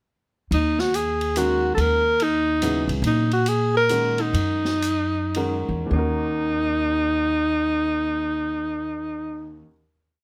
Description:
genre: modal jazz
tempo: 100-144 BPM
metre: 3/4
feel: swing 64% on 8ths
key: Eb phrygian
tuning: A4 = 440 Hz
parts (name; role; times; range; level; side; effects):
- mellow alto saxophone; melody; 0.5-9.6 s; Eb4 to Bb4; -24 LUFS; equal; none
- upright bass; bass; 0.5-9.6 s; Db2 to Bb2; -29 LUFS; equal; none
- open jazz drum kit; drums; 0.5-5.5 s; hi-hat, ride cymbal, snare drum; -36 LUFS; equal; none
- warm grand piano; accompaniment; 1.4-9.7 s; Eb2 to Bb4; -32 LUFS; equal; none
room: light reverb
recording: none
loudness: -23 LUFS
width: mono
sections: 0.5-5.9 A section; 5.9-9.5 final chord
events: slowing down 3.0-5.9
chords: 0.5 Ebm7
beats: | 0.52 0.94 1.36 | 1.78 2.20 2.62 | 3.04 3.46 3.89 | 4.35 4.83 5.35 | 5.92 6.52 7.12 | 7.72 8.32 8.92

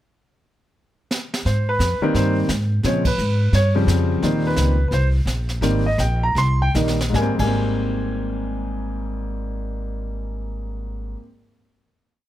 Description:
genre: jazz piano trio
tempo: 148-174 BPM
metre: 4/4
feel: swing 62% on 8ths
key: Ab major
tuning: A4 = 440 Hz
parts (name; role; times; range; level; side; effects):
- jazz brush drum kit; drums; 1.1-7.5 s; brushed snare drum, crash cymbal, hi-hat, kick drum, ride cymbal, snare drum; -28 LUFS; right 1 dB; none
- warm grand piano; melody; 1.5-11.3 s; Ab2 to C6; -22 LUFS; left 1 dB; plate reverb
- upright bass; bass; 1.5-11.1 s; Ab1 to Bb2; -21 LUFS; equal; none
room: light reverb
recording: none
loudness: -18 LUFS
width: side -13 dB against mid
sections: 0.1-1.5 pickup bar; 1.5-7.1 A section; 7.1-10.4 final chord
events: drum fill 1.1-1.5, 6.8-7.1; band accent 3.0; slowing down 4.2-7.1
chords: 0.1 N.C.; 1.5 Abmaj9; 2.8 Bbm9; 3.5 Dbmaj7#11; 4.2 Abmaj9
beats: | 0.07 0.41 0.76 1.11 | 1.45 1.80 2.14 2.49 | 2.83 3.18 3.53 3.87 | 4.22 4.56 4.91 5.26 | 5.62 5.99 6.36 6.75 | 7.15 7.55 7.96 8.37 | 8.77 9.18 9.58 9.99

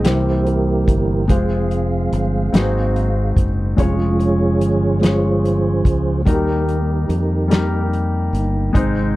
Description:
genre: slow gospel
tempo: 48 BPM (dotted quarters)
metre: 6/8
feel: straight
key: unclear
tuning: A4 = 437 Hz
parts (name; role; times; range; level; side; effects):
- warm concert grand piano; accompaniment; 0.0-9.2 s; Ab2 to Db5; -22 LUFS; left 2 dB; none
- mellow tonewheel organ; sustained chords; 0.0-9.2 s; C3 to F5; -21 LUFS; right 3 dB; chorus vibrato, stopped rotary speaker
- fingered electric bass; bass; 0.0-9.2 s; F1 to F2; -19 LUFS; equal; none
- warm soul drum kit; drums; 0.0-8.9 s; hi-hat, kick drum, snare drum; -17 LUFS; equal; none
room: light reverb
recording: dry, close 1970s-style studio recording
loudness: -15 LUFS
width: side -17 dB against mid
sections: 0.0-9.2 A section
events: tonewheel organ solo 0.0-9.2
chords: 0.1 C7; 1.3 Fm; 2.5 Ab7; 3.8 Db/F; 6.3 Eb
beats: 0.06 | 1.30 2.54 | 3.78 5.02 | 6.26 7.51 | 8.75

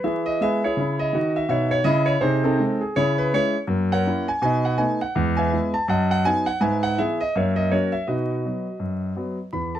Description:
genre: jazz, stride piano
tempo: 164 BPM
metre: 4/4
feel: swing 61% on 8ths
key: unclear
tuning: A4 = 445 Hz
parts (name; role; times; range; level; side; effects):
- warm concert grand piano; solo; 0.0-9.8 s; E2 to B5; -20 LUFS; equal; none
room: moderate club reverb, RT60 0.5 s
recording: vinyl crackle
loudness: -20 LUFS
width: side -11 dB against mid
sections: 0.0-9.5 A section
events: none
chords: 0.0 E; 0.8 C#m7; 2.2 G#/B#; 3.0 C#m; 3.7 F#7; 4.4 B7; 5.2 E; 5.9 B/F#; 6.6 E/G#; 7.3 F#; 8.1 B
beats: 0.04 0.41 | 0.77 1.14 1.50 1.87 | 2.23 2.60 2.96 3.33 | 3.69 4.06 4.43 4.79 | 5.16 5.52 5.89 6.25 | 6.62 6.99 7.35 7.71 | 8.08 8.45 8.81 9.18 | 9.54

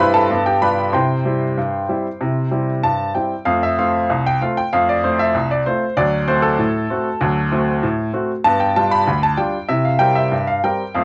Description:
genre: ragtime piano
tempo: 96 BPM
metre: 2/4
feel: straight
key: C major, F major from 3.5 s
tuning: A4 = 439 Hz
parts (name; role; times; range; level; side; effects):
- bright baby grand piano; solo; 0.0-11.0 s; C2 to C6; -15 LUFS; equal; cassette tape
room: light reverb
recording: home recording on cassette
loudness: -15 LUFS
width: side -27 dB against mid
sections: 0.0-3.5 A section; 3.5-11.0 B section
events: none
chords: 0.3 G7; 0.9 C; 3.5 F; 6.0 D7; 8.5 G7; 9.7 C7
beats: 0.30 | 0.94 1.57 | 2.20 2.83 | 3.46 4.09 | 4.72 5.34 | 5.96 6.59 | 7.21 7.83 | 8.45 9.07 | 9.70 10.32 | 10.95

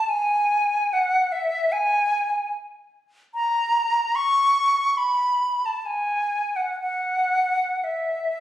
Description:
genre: classical, free, expressive piece for unaccompanied flute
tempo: 57-75 BPM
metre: 4/4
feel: rubato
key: unclear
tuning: A4 = 438 Hz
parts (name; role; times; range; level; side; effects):
- silver concert flute; solo; 0.0-8.4 s; E5 to C#6; -20 LUFS; equal; none
room: moderate recital hall reverb, RT60 1.3 s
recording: recorded on a phone in the room, studio ambience, compression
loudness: -20 LUFS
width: side -12 dB against mid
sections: 0.0-8.4 A section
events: none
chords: none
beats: | 0.09 0.93 1.74 2.54 | 3.35 4.16 4.98 5.86 | 6.81 7.83

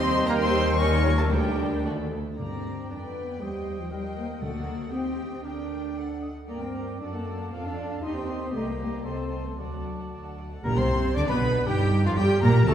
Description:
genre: quick classical-period movement for symphony orchestra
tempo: 117 BPM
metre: 2/4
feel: straight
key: G minor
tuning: A4 = 440 Hz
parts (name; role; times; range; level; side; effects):
- warm chamber violin section; melody; 0.0-12.7 s; F5 to D6; -36 LUFS; left 3 dB; none
- mellow cor anglais; second line; 0.0-12.7 s; G3 to F5; -36 LUFS; equal; none
- small flute group; second line; 0.0-12.7 s; F4 to C6; -36 LUFS; left 1 dB; none
- warm chamber violin section; second line; 0.0-12.7 s; D4 to F#5; -38 LUFS; equal; none
- warm clarinet; second line; 0.0-12.7 s; F4 to G5; -38 LUFS; left 2 dB; none
- warm chamber viola section; accompaniment; 0.0-12.7 s; D3 to Bb4; -33 LUFS; right 1 dB; none
- dark French horn section; sustained chords; 0.0-12.7 s; F3 to C5; -33 LUFS; left 1 dB; none
- dark chamber cello section; bass; 0.0-12.7 s; D2 to Eb4; -29 LUFS; right 1 dB; none
- rich chamber double bass section; bass; 0.0-12.7 s; G1 to G2; -30 LUFS; right 1 dB; none
- timpani; percussion; 1.3-4.9, 10.7-12.7 s; G2 to D3; -37 LUFS; left 1 dB; none
room: wet recital hall reverb, RT60 1.6 s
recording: heard from further back in the room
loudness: -24 LUFS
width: side -9 dB against mid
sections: 0.0-2.4 A section; 2.4-10.6 A section; 10.6-12.7 A section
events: none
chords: 0.3 Eb; 1.3 Gm/D; 1.8 D; 2.4 Gm; 2.9 G7/F; 3.4 Cm/Eb; 4.4 D; 4.9 Cm/Eb; 5.5 Gm/D; 6.5 Gm; 7.0 D/F#; 7.5 Dm/F; 8.0 Cm/Eb; 8.5 Cm; 9.1 Adim/C; 9.6 D; 10.6 Gm/Bb; 11.2 Bm; 11.7 Gm7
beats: | 0.28 0.79 | 1.31 1.85 | 2.38 2.90 | 3.42 3.92 | 4.42 4.93 | 5.45 5.97 | 6.49 7.01 | 7.52 8.03 | 8.54 9.05 | 9.58 10.11 | 10.64 11.16 | 11.67 12.18 | 12.68

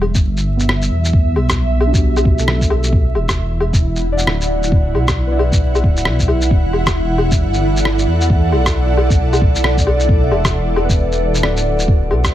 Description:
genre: future garage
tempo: 134 BPM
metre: 4/4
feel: swing 60% on 16ths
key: E minor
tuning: A4 = 440 Hz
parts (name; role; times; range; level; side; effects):
- muted felt-like synth keys; accompaniment; 0.0-12.3 s; G3 to F#5; -24 LUFS; left 2 dB; chorus, sidechain pumping, analog delay
- ethereal airy pad; sustained chords; 0.4-12.3 s; E4 to F#5; -21 LUFS; right 1 dB; ensemble chorus, built-in reverb, sidechain pumping
- dark detuned saw bass; bass; 0.0-12.3 s; D1 to E2; -17 LUFS; equal; sidechain pumping
- electronic woodblock, shaker and rim click; drums; 0.0-12.3 s; none; -20 LUFS; left 1 dB; none
- electronic kick drum; drums; 0.1-12.3 s; none; -14 LUFS; equal; none
room: light reverb, digital ambience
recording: echo-heavy mix, vinyl crackle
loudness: -13 LUFS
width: side -12 dB against mid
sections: 0.0-12.3 A section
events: none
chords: 0.0 Em; 2.9 D; 6.5 Em11; 10.1 Bm7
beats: 0.24 0.69 | 1.14 1.58 2.03 2.48 | 2.93 3.37 3.82 4.27 | 4.72 5.17 5.61 6.06 | 6.51 6.96 7.40 7.85 | 8.30 8.75 9.20 9.64 | 10.09 10.54 10.99 11.43 | 11.88 12.33

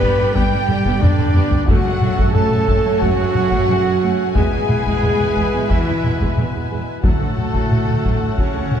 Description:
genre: cinematic, epic orchestral film score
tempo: 90 BPM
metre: 4/4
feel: straight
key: F# minor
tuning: A4 = 441 Hz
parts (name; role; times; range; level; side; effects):
- warm symphonic violin section; melody; 0.0-8.8 s; A4 to B5; -31 LUFS; left 5 dB; none
- mellow flute section; second line; 0.0-8.8 s; A4 to B5; -29 LUFS; right 1 dB; none
- rich symphonic violin section; second line; 0.0-8.8 s; C#5 to A5; -31 LUFS; left 4 dB; none
- rich symphonic viola section; accompaniment; 0.0-8.8 s; D3 to B4; -27 LUFS; right 2 dB; none
- bright trombone section; sustained chords; 0.0-8.8 s; A2 to A3; -30 LUFS; right 4 dB; none
- warm French horn section; sustained chords; 0.0-8.8 s; A3 to B4; -22 LUFS; equal; none
- warm woodwind section; sustained chords; 0.0-8.8 s; A3 to G5; -31 LUFS; left 1 dB; none
- warm trumpet; stabs; 0.0-8.8 s; A3 to B4; -27 LUFS; right 3 dB; none
- rich symphonic cello section; bass; 0.0-8.8 s; A2 to B3; -24 LUFS; right 1 dB; none
- warm symphonic double bass section; bass; 0.0-8.8 s; D2 to G2; -24 LUFS; right 4 dB; none
- taiko ensemble; drums; 0.0-8.8 s; none; -19 LUFS; left 1 dB; none
- timpani; percussion; 1.7-2.6 s; F#2; -27 LUFS; left 1 dB; none
room: moderate concert hall reverb, RT60 2.0 s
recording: dark, warm production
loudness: -14 LUFS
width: side -8 dB against mid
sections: 0.0-8.8 A section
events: drum fill 1.0-1.7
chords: 0.0 G; 1.7 F#madd9; 4.4 E; 7.0 D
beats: 0.35 1.01 | 1.68 2.35 3.02 3.68 | 4.35 5.02 5.70 6.37 | 7.04 7.71 8.38

